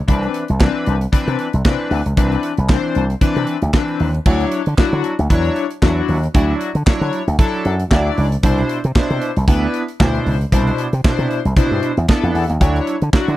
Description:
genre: early-eighties boogie funk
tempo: 115 BPM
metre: 4/4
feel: swing 56% on 16ths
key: D major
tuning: A4 = 440 Hz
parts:
  - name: chorused polysynth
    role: accompaniment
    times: 0.1-13.4 s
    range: B2 to D5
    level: -20 LUFS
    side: left 2 dB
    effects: none
  - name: slap bass with an envelope filter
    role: bass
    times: 0.1-13.4 s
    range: C2 to D3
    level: -18 LUFS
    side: equal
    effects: none
  - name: modern studio drum kit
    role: drums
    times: 0.1-13.4 s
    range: crash cymbal, handclaps, hi-hat, kick drum, snare drum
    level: -14 LUFS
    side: equal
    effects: none
room: small room ambience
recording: dry, close 1970s-style studio recording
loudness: -14 LUFS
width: side -15 dB against mid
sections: 0.0-4.3 A section; 4.3-13.4 B section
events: none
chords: 0.1 Cmaj9; 4.3 Dmaj9; 8.4 Cmaj9; 12.6 Dmaj9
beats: | 0.09 0.61 1.13 1.65 | 2.17 2.70 3.22 3.74 | 4.26 4.78 5.30 5.83 | 6.35 6.87 7.39 7.91 | 8.44 8.96 9.48 10.00 | 10.52 11.04 11.56 12.09 | 12.61 13.13

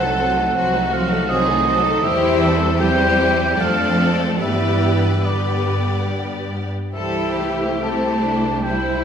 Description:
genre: classical, slow romantic movement for symphony orchestra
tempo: 65-82 BPM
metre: 3/4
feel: rubato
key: C major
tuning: A4 = 440 Hz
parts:
  - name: clear symphonic violin section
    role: melody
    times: 0.0-9.0 s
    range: E4 to B4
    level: -27 LUFS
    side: left 4 dB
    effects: none
  - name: mellow oboe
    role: second line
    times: 0.0-9.0 s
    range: D5 to A5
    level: -22 LUFS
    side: right 2 dB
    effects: none
  - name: rich symphonic violin section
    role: second line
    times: 0.0-9.0 s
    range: D4 to D5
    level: -24 LUFS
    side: left 2 dB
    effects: none
  - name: warm symphonic viola section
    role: accompaniment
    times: 0.0-9.0 s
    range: Gb3 to E4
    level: -23 LUFS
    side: left 1 dB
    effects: none
  - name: clear studio cello section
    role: bass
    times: 0.0-9.0 s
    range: D3 to A3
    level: -24 LUFS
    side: right 2 dB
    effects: none
  - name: clear symphonic double bass section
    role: bass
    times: 0.0-9.0 s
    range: C2 to G2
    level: -24 LUFS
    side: right 1 dB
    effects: none
room: wet recital hall reverb, RT60 1.3 s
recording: recorded in a church or concert hall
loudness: -16 LUFS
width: side -8 dB against mid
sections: 0.0-9.0 A section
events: none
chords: 0.0 Cdim7; 2.0 C/E; 3.6 Dm7/F; 4.4 G; 6.9 C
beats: 0.55 1.29 | 2.03 2.79 3.59 | 4.41 5.24 6.08 | 6.93 7.82 8.62

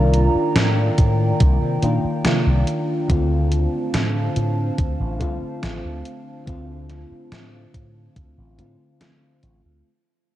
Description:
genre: vaporwave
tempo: 71 BPM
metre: 4/4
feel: straight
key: unclear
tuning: A4 = 435 Hz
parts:
  - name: mellow FM electric piano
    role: accompaniment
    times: 0.0-9.9 s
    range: D3 to Bb4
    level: -24 LUFS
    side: left 1 dB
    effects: lush chorus, analog delay
  - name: warbly tape-like pad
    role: sustained chords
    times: 0.0-9.8 s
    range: Eb3 to Bb5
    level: -28 LUFS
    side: right 1 dB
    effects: chorus, built-in reverb, vintage 12-bit sampler grit
  - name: slap bass with an envelope filter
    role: bass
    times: 0.0-9.8 s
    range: A1 to C3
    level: -21 LUFS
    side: equal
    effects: none
  - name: gated 80s digital drum machine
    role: drums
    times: 0.1-9.6 s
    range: hi-hat, snare drum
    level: -24 LUFS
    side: equal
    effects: gated reverb, gated reverb snare, overdrive
  - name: electronic kick drum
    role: drums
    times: 1.0-8.3 s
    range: none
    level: -19 LUFS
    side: equal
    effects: overdrive
room: digital ambience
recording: cassette tape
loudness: -18 LUFS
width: side -14 dB against mid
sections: 0.0-9.9 A section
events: fade-out 0.0-9.9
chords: 0.0 Cm11; 3.1 Dm7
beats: 0.56 1.40 2.25 | 3.09 3.94 4.78 5.63 | 6.47 7.32 8.16 9.01

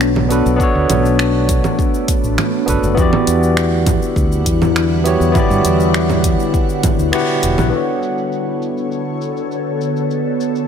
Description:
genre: sunset chillout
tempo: 101 BPM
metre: 4/4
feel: straight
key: unclear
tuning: A4 = 440 Hz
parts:
  - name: barky tine electric piano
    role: accompaniment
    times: 0.0-10.7 s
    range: B3 to F#5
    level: -18 LUFS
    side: equal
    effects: auto-pan, vintage 12-bit sampler grit, low-pass filter, ping-pong delay
  - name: ethereal airy pad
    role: sustained chords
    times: 0.0-10.7 s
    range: D3 to F#5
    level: -20 LUFS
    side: left 1 dB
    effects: ensemble chorus, built-in reverb, phaser
  - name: fretless electric bass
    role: bass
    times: 0.0-7.7 s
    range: E1 to G2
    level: -17 LUFS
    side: equal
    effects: none
  - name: deep house drum kit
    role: drums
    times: 0.0-10.7 s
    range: cabasa, congas, finger snaps, hi-hat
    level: -21 LUFS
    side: right 2 dB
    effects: low-pass filter on perc, low-pass filter on hats, low-pass filter on snare, low-pass filter on room
  - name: electronic kick drum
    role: drums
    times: 0.6-7.0 s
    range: none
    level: -18 LUFS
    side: equal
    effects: none
room: moderate lush hall reverb, RT60 2.4 s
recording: none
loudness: -13 LUFS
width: side -7 dB against mid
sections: 0.0-7.7 A section; 7.7-10.7 B section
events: kick drops out 7.1-7.7; band accent 7.1; filter sweep on drum 7.7-10.7; filter sweep on tine electric piano 7.7-10.7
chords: 0.0 Bm9; 3.0 Em9; 7.7 Bm9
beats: 0.01 | 0.60 1.19 1.79 2.38 | 2.98 3.57 4.16 4.76 | 5.35 5.95 6.54 7.13 | 7.73 8.32 8.92 9.51 | 10.10

